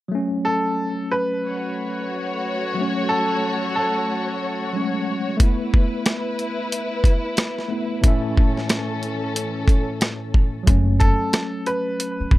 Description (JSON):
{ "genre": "hip hop, boom-bap hip-hop", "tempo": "91 BPM", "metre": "4/4", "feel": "swing 62% on 16ths", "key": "F# minor", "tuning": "A4 = 440 Hz", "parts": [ { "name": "tine electric piano", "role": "accompaniment", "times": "0.1-12.4 s", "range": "A2 to E5", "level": "-26 LUFS", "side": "left 1 dB", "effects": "overdrive, fast stereo tremolo, cassette tape, high-pass filter, low-pass filter" }, { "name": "bright upright piano", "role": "melody", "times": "0.4-4.7, 11.0-12.4 s", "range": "A4 to B4", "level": "-24 LUFS", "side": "equal", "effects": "high-pass filter, low-pass filter, tape echo" }, { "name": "warm studio string section", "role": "stabs", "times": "1.4-10.6 s", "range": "E3 to C#5", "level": "-27 LUFS", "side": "left 1 dB", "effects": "high-pass filter, low-pass filter, tape echo" }, { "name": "boom bap sampler-style drum kit", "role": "drums", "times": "5.4-12.4 s", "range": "hi-hat, kick drum, rim click, snare drum", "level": "-17 LUFS", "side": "equal", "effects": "none" }, { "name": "upright bass", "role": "bass", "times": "10.7-12.4 s", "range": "E1 to F#1", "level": "-20 LUFS", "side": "equal", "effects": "none" } ], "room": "little or no reverb", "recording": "none", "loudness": "-19 LUFS", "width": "side -16 dB against mid", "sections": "0.1-10.7 A section; 10.7-12.4 B section", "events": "none", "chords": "0.1 F#m; 5.4 Esus4; 8.0 A; 10.7 F#m" }